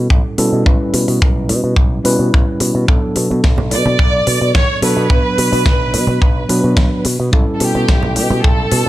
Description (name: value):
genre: nu-disco, nu disco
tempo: 108 BPM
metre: 4/4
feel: straight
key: B minor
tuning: A4 = 440 Hz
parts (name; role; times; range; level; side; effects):
- mellow tine electric piano; accompaniment; 0.0-8.9 s; F#3 to B4; -19 LUFS; equal; sidechain pumping, tape echo
- picked electric bass with an envelope filter; bass; 0.0-8.9 s; B1 to B2; -17 LUFS; equal; tube saturation
- kick drum; drums; 0.1-8.6 s; none; -13 LUFS; equal; none
- pop drum kit; drums; 0.4-8.8 s; hi-hat, snare drum; -21 LUFS; equal; none
- congas; percussion; 3.3-8.8 s; none; -20 LUFS; right 2 dB; none
- rich chamber violin section; melody; 3.7-8.9 s; G4 to D5; -18 LUFS; right 1 dB; tape echo
room: small room ambience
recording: none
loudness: -12 LUFS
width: side -15 dB against mid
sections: 0.0-8.9 A section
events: none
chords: 0.0 A7/B; 2.9 Bm7; 7.0 A7/B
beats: 0.10 | 0.66 1.22 1.77 2.33 | 2.88 3.44 3.99 4.55 | 5.10 5.66 6.21 6.77 | 7.33 7.88 8.44